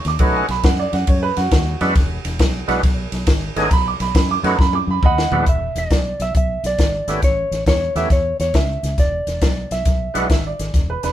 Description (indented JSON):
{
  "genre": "electric blues shuffle",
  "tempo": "137 BPM",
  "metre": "4/4",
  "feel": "swing 67% on 8ths",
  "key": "E mixolydian",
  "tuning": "A4 = 440 Hz",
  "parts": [
    { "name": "warm upright piano", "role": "second line", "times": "0.0-5.5, 10.3-11.1 s", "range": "D4 to D6", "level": "-23 LUFS", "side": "right 6 dB", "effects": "none" },
    { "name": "fingered electric bass", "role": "bass", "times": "0.0-11.1 s", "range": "E1 to F#2", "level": "-23 LUFS", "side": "equal", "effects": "none" },
    { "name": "compact cocktail drum kit", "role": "drums", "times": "0.0-11.1 s", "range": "hi-hat, kick drum, ride cymbal, snare drum, toms", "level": "-18 LUFS", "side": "equal", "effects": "none" },
    { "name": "overdriven tonewheel organ", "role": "accompaniment", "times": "0.2-10.3 s", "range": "G#3 to G#4", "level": "-20 LUFS", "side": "right 1 dB", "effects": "slow rotary speaker" },
    { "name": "clean lap steel guitar", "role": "melody", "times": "5.1-10.6 s", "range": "C#5 to F#5", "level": "-22 LUFS", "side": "equal", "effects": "none" }
  ],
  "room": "light reverb",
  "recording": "band playing live in one room",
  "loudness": "-16 LUFS",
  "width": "side -12 dB against mid",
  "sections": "0.0-5.5 A section; 5.5-11.1 B section",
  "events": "upright piano solo 0.0-5.5; drum fill 4.6-5.5",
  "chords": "0.0 B7; 2.0 E7; 3.7 B7; 5.5 E7; 7.2 A7; 9.0 E7"
}